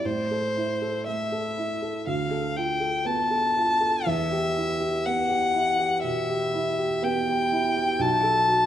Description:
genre	classical, impressionist duo for violin and grand piano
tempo	60 BPM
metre	4/4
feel	rubato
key	unclear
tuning	A4 = 437 Hz
part	rich violin	melody	0.0-8.7 s	C5 to A5	-24 LUFS	left 2 dB	none
part	warm baby grand piano	accompaniment	0.0-8.7 s	B1 to A4	-27 LUFS	right 2 dB	none
room	wet recital hall reverb, RT60 1.6 s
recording	lossy compression artefacts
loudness	-23 LUFS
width	side -11 dB against mid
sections	0.0-8.7 A section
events	none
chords	0.1 Am; 2.1 Dm6; 4.1 Em; 8.0 B7(no3)

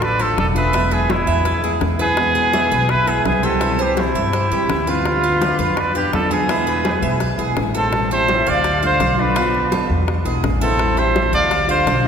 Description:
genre	latin, Cuban son and guajira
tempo	167 BPM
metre	4/4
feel	straight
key	unclear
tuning	A4 = 444 Hz
part	warm trumpet	melody	0.0-12.1 s	E4 to D5	-19 LUFS	right 1 dB	none
part	bright reedy silver concert flute	second line	0.0-12.1 s	G4 to F5	-27 LUFS	left 2 dB	none
part	nylon-string guitar	accompaniment	0.0-12.1 s	B2 to F4	-25 LUFS	left 2 dB	none
part	Cuban tres	arpeggios	0.0-12.1 s	E4 to F5	-24 LUFS	right 3 dB	none
part	upright bass	bass	0.0-12.1 s	E1 to G2	-22 LUFS	equal	none
part	bongos	percussion	0.0-12.1 s	none	-26 LUFS	left 4 dB	none
part	congas	percussion	0.0-12.1 s	none	-28 LUFS	equal	none
room	wet cathedral reverb, RT60 4.1 s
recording	recorded in a church or concert hall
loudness	-15 LUFS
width	side -7 dB against mid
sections	0.0-7.9 A section; 7.9-12.1 B section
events	none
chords	0.0 Dm; 0.7 E; 3.6 C; 5.1 Bdim/D; 6.5 E; 7.9 Am7; 8.6 Dm; 9.4 Bm7b5; 10.1 E7; 10.8 Am7; 11.5 Dm

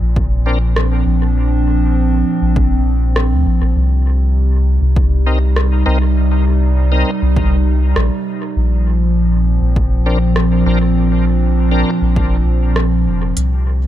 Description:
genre	ambient dub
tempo	100 BPM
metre	4/4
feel	straight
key	unclear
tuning	A4 = 439 Hz
part	warbly tape-like pad	sustained chords	0.0-13.9 s	Bb2 to Eb4	-18 LUFS	right 1 dB	chorus, built-in reverb
part	soft dub sub bass	bass	0.0-13.9 s	F1 to D2	-14 LUFS	equal	none
part	electronic kick drum	drums	0.2-12.3 s	none	-18 LUFS	equal	overdrive
part	bright tonewheel organ	stabs	0.5-0.6, 5.3-11.9 s	C4 to Bb4	-25 LUFS	left 2 dB	overdrive, chorus vibrato, slow rotary speaker, dub echo
part	organic electronic drum kit	drums	0.8-13.5 s	hi-hat, rim click	-24 LUFS	equal	dub echo
room	little or no reverb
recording	none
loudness	-12 LUFS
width	side -12 dB against mid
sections	0.0-13.9 A section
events	none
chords	0.0 Bbadd9; 3.8 Cm7; 8.6 Bbadd9; 13.4 N.C.

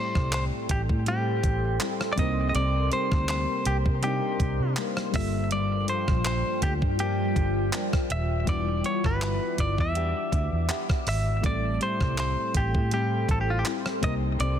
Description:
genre	contemporary R&B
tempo	81 BPM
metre	4/4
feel	swing 54% on 16ths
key	A minor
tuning	A4 = 442 Hz
part	direct-recorded clean electric guitar	melody	0.0-14.6 s	F4 to E5	-30 LUFS	equal	ping-pong delay
part	mellow FM electric piano	accompaniment	0.0-14.6 s	G3 to C5	-36 LUFS	equal	chorus, phaser
part	ethereal airy pad	sustained chords	0.5-14.6 s	G3 to D6	-34 LUFS	equal	ensemble chorus, built-in reverb
part	flamenco guitar	arpeggios	0.0-14.6 s	G2 to G4	-34 LUFS	left 7 dB	none
part	vintage muted fingered electric bass	bass	0.2-14.6 s	D#1 to C3	-28 LUFS	right 1 dB	none
part	clean 12-bit digital drum machine	drums	0.2-14.6 s	handclaps, hi-hat, kick drum, rim click	-28 LUFS	equal	soft clipping on snare
room	light reverb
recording	dense, heavily limited modern master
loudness	-24 LUFS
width	side -9 dB against mid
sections	0.0-14.6 A section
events	none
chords	0.0 Am7; 2.2 Cm7; 5.1 Gm7; 8.5 Em7; 11.4 Am7; 14.0 Cm7

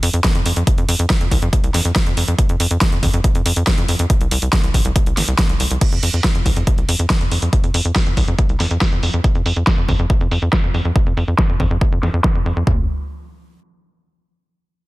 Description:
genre	uplifting trance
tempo	140 BPM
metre	4/4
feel	straight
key	unclear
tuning	A4 = 440 Hz
part	tight sequencer bass	bass	0.0-12.9 s	G1 to F2	-18 LUFS	equal	sidechain pumping
part	big-room dance drum kit	drums	0.0-12.6 s	crash cymbal, hi-hat, snare drum	-21 LUFS	equal	overdrive, low-pass filter on snare, sidechain pumping on hats, low-pass filter on hats, sidechain pumping on cymbals, low-pass filter on cymbals
part	punchy analog drum machine	drums	0.2-12.8 s	kick drum, toms	-17 LUFS	equal	none
room	digital ambience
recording	dense, heavily limited modern master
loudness	-14 LUFS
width	side -19 dB against mid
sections	0.0-5.8 A section; 5.8-12.7 B section; 12.7-14.4 C section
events	drop 0.0-5.8; filter sweep on drum 5.8-12.7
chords	none

